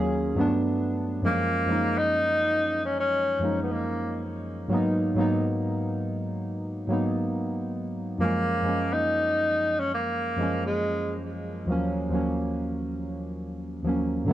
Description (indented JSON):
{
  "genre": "hip hop",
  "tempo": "69 BPM",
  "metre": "4/4",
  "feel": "swing 66% on 16ths",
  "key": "F# major",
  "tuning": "A4 = 440 Hz",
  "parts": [
    { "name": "soft electric-piano-like synth keys", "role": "accompaniment", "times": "0.0-14.3 s", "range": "D#2 to G#4", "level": "-26 LUFS", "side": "equal", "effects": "chorus" },
    { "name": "breathy tenor saxophone", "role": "melody", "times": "1.3-11.2 s", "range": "G#3 to D#4", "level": "-26 LUFS", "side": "equal", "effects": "tape echo" }
  ],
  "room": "moderate studio reverb, RT60 0.6 s",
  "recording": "cassette tape",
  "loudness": "-24 LUFS",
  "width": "side -13 dB against mid",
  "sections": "0.0-14.3 A section",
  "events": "none",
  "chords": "0.4 Gmaj9; 1.2 F#maj9; 4.7 G#m7; 8.2 F#maj9; 11.7 D#m9",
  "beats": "0.37 | 1.24 2.11 2.98 3.85 | 4.72 5.58 6.46 7.33 | 8.19 9.06 9.93 10.80 | 11.67 12.54 13.41 14.28"
}